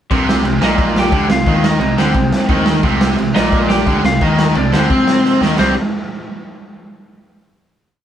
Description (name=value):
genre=punk rock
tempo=175 BPM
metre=4/4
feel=straight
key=C minor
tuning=A4 = 440 Hz
part: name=raw garage guitar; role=riff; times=0.1-5.7 s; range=Bb2 to C4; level=-20 LUFS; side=left 5 dB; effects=overdrive
part: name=tight distorted guitar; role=riff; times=0.1-5.7 s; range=Bb2 to C4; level=-19 LUFS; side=right 4 dB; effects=distortion
part: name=growling picked electric bass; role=bass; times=0.1-5.7 s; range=Bb1 to C3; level=-21 LUFS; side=left 1 dB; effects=overdrive
part: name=raw garage drum kit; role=drums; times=0.1-5.7 s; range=crash cymbal, kick drum, snare drum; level=-16 LUFS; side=right 1 dB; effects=none
part: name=lightly driven lead guitar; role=melody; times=0.6-5.7 s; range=C4 to G5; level=-19 LUFS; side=left 1 dB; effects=none
room=moderate studio reverb, RT60 0.5 s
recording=band playing live in one room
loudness=-12 LUFS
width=side -10 dB against mid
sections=0.1-5.6 riff; 5.6-6.9 final chord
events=drum fill 5.2-5.6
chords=0.1 Cm; 5.6 C5